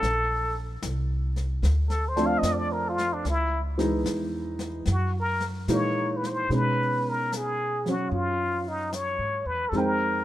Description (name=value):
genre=jazz ballad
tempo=74 BPM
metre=4/4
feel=swing 67% on 8ths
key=unclear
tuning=A4 = 440 Hz
part: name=trumpet with plunger mute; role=melody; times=0.0-10.2 s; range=D4 to F5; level=-27 LUFS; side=left 1 dB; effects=none
part: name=warm baby grand piano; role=accompaniment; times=0.0-10.2 s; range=Fb3 to G5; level=-28 LUFS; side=right 1 dB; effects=none
part: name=upright bass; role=bass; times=0.0-10.2 s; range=Bb1 to B2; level=-29 LUFS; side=equal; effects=none
part: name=vintage brush drum kit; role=drums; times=0.0-10.2 s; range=brushed snare drum, hi-hat, snare drum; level=-38 LUFS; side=left 3 dB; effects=none
room=light reverb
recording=minimal, uncompressed stereo recording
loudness=-24 LUFS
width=side -14 dB against mid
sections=0.0-6.5 A section; 6.5-10.2 B section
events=muted trumpet solo 0.0-6.5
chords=0.0 Bbmaj7; 3.2 Dbm7; 4.9 Gb13; 6.5 B69; 9.7 Fm7